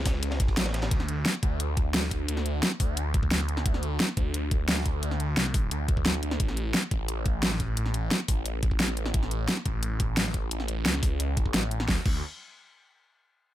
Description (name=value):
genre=dark technical drum and bass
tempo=175 BPM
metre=4/4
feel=straight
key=unclear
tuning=A4 = 441 Hz
part: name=phased detuned saw bass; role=bass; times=0.0-12.2 s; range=A1 to D2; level=-29 LUFS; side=equal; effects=phaser, overdrive, sidechain pumping
part: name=crunchy breakbeat drum kit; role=drums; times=0.1-0.9 s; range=ride cymbal, snare drum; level=-39 LUFS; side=equal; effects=high-pass filter on cymbals, high-pass filter on hats, high-pass filter on snare, high-pass filter on room
part: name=dubstep drum kit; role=drums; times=0.1-12.1 s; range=crash cymbal, hi-hat, snare drum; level=-28 LUFS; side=equal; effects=overdrive
part: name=electronic kick drum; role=drums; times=0.1-12.1 s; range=none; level=-27 LUFS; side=equal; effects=none
room=small room ambience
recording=none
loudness=-25 LUFS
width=side -13 dB against mid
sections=0.0-11.9 A section; 11.9-13.3 B section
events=none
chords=none